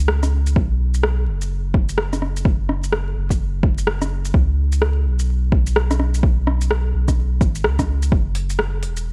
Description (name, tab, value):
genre	future garage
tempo	127 BPM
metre	4/4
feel	swing 61% on 16ths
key	unclear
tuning	A4 = 440 Hz
part	soft dub sub bass	bass	0.0-9.1 s	E1 to C#2	-22 LUFS	equal	sidechain pumping
part	deep house drum kit	drums	0.1-9.0 s	hi-hat, rim click, shaker	-25 LUFS	equal	overdrive, small room reverb
part	electronic kick drum	drums	0.6-8.2 s	none	-20 LUFS	equal	overdrive, small room reverb
room	digital ambience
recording	vinyl crackle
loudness	-19 LUFS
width	mono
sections	0.0-8.1 A section; 8.1-9.1 A section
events	none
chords	none